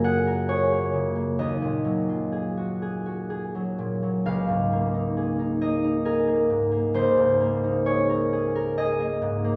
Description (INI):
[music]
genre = classical, solo harp piece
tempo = 61-69 BPM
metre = 3/4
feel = rubato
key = Db major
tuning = A4 = 440 Hz
[part]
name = concert harp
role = solo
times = 0.0-9.6 s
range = Db2 to Ab5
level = -25 LUFS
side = equal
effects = none
[sound]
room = wet recital hall reverb, RT60 1.7 s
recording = recorded in a church or concert hall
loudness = -25 LUFS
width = mono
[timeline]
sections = 0.0-9.6 A section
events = none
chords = 0.0 Gbmaj9; 1.4 Ebm11; 4.3 Db69